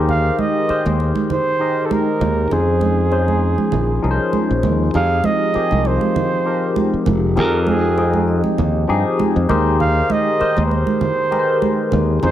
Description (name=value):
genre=lush 1970s-style soul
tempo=99 BPM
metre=4/4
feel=swing 54% on 16ths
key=Ab major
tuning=A4 = 438 Hz
part: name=barky tine electric piano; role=accompaniment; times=0.0-12.3 s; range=Eb3 to G5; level=-19 LUFS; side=left 4 dB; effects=overdrive, phaser
part: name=modern bright fingered electric bass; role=bass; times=0.0-12.3 s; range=F1 to G2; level=-18 LUFS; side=equal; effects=none
part: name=breathy flugelhorn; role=melody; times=0.1-12.3 s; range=Ab4 to F5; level=-21 LUFS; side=right 3 dB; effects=none
part: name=congas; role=percussion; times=0.1-12.3 s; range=none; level=-23 LUFS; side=right 6 dB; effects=none
part: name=vibraphone with soft mallets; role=texture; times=5.5-9.0 s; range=Bb4 to F5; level=-30 LUFS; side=right 4 dB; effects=none
room=light reverb, studio reverb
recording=none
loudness=-15 LUFS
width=side -11 dB against mid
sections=0.0-4.9 A section; 4.9-12.3 A section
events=none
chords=0.0 Abmaj9/Eb; 2.5 Dbmaj7/F; 4.9 Fm7; 9.5 Abmaj9/Eb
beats=| 0.08 0.69 1.30 1.91 | 2.51 3.12 3.73 4.33 | 4.94 5.55 6.16 6.76 | 7.37 7.98 8.58 9.19 | 9.80 10.40 11.01 11.62 | 12.22